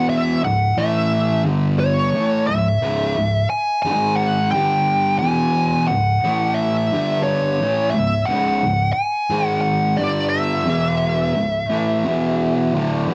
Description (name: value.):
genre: metal.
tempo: 88 BPM.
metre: 4/4.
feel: straight.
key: C# phrygian.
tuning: A4 = 441 Hz.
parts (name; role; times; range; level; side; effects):
fuzz lead guitar; melody; 0.0-13.0 s; C#5 to G#5; -22 LUFS; equal; wah, distortion.
fuzz guitar; riff; 0.0-13.1 s; C#2 to A3; -21 LUFS; equal; distortion.
room: light reverb.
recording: dark, warm production.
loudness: -19 LUFS.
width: mono.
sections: 0.0-13.1 A section.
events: none.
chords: 0.4 C#5; 0.8 A5; 1.5 G5; 2.1 C#m; 3.8 G#5; 4.5 G5; 5.2 E5; 5.9 C#5; 6.2 A5; 6.9 G5; 7.6 C#m; 9.3 G#5; 10.0 G5; 10.7 E5; 11.4 C#m; 12.0 E5.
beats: | 0.09 0.77 1.46 2.14 | 2.82 3.50 4.18 4.86 | 5.55 6.23 6.91 7.59 | 8.28 8.96 9.64 10.33 | 11.02 11.70 12.39 13.08.